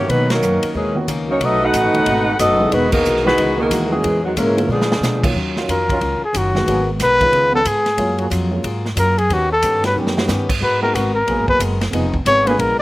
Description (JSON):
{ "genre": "jazz, big band swing", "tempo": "182 BPM", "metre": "4/4", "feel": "swing 63% on 8ths", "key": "Eb minor from 5.3 s", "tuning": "A4 = 442 Hz", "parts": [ { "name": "mellow saxophone section", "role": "melody", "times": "0.0-5.2 s", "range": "D#3 to F#5", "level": "-17 LUFS", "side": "left 1 dB", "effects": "slapback echo" }, { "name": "warm trombone section", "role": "second line", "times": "0.0-5.2 s", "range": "B2 to F#4", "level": "-21 LUFS", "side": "right 2 dB", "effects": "slapback echo" }, { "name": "warm baby grand piano", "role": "accompaniment", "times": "0.0-12.8 s", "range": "D3 to Bb4", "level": "-24 LUFS", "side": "equal", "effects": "none" }, { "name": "upright bass", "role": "bass", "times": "0.0-12.8 s", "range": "D#1 to B2", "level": "-23 LUFS", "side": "equal", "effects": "none" }, { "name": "picked plugged-in swing-style acoustic guitar", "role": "accompaniment", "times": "0.1-12.8 s", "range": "A#2 to Bb4", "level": "-25 LUFS", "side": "left 3 dB", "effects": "slapback echo" }, { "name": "swinging big-band drum kit", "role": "drums", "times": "0.1-12.7 s", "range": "crash cymbal, hi-hat, kick drum, ride cymbal, snare drum", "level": "-24 LUFS", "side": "equal", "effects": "none" }, { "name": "mellow trombone section", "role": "sustained chords", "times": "5.6-12.5 s", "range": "D3 to Cb5", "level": "-23 LUFS", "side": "right 2 dB", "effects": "none" }, { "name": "breathy trumpet", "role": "melody", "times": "5.7-12.8 s", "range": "Gb4 to Db5", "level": "-16 LUFS", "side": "left 1 dB", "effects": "none" } ], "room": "little or no reverb", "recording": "recorded outdoors, with no room sound", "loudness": "-14 LUFS", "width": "side -18 dB against mid", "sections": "0.0-5.3 A section; 5.3-12.8 B section", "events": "band accent 0.2, 2.9; drum fill 4.7-5.0, 10.0-10.3; trumpet solo 5.3-12.8", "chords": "0.1 Bmaj9; 1.4 B7; 2.7 Emaj9; 4.0 A#m7b5; 4.7 A#7b9; 5.3 Ebm9; 6.7 Abm9; 7.3 Db7; 8.0 Gbmaj9; 9.3 Eb7alt; 10.6 Abm9; 11.9 Fm7b5", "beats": "| 0.09 0.41 0.74 1.07 | 1.40 1.73 2.06 2.39 | 2.72 3.05 3.38 3.71 | 4.03 4.36 4.69 5.02 | 5.35 5.68 6.01 6.34 | 6.67 6.99 7.32 7.65 | 7.98 8.31 8.64 8.97 | 9.30 9.62 9.95 10.28 | 10.61 10.94 11.27 11.60 | 11.93 12.25 12.58" }